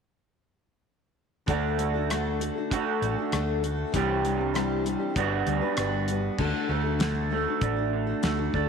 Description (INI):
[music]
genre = folk rock and heartland rock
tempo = 98 BPM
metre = 4/4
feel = straight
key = D mixolydian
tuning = A4 = 440 Hz
[part]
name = picked steel-string acoustic guitar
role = accompaniment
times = 1.5-8.7 s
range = G2 to B4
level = -30 LUFS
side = left 10 dB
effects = none
[part]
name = electric guitar through a small old amp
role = riff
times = 1.5-8.7 s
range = C3 to G4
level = -28 LUFS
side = right 11 dB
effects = lush chorus
[part]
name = hollow-body short-scale fingered electric bass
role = bass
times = 1.5-8.7 s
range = G1 to D2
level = -31 LUFS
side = equal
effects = none
[part]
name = damped 70s drum kit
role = drums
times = 1.5-8.7 s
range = crash cymbal, hi-hat, kick drum, rim click, snare drum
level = -32 LUFS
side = left 1 dB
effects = none
[sound]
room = moderate echo chamber reverb, RT60 2.4 s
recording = 1960s-style stereo with parts hard left and right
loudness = -25 LUFS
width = side -6 dB against mid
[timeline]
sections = 1.5-6.4 A section; 6.4-8.7 B section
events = none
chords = 1.5 D; 3.9 Cadd9; 5.2 Gmaj7; 6.4 D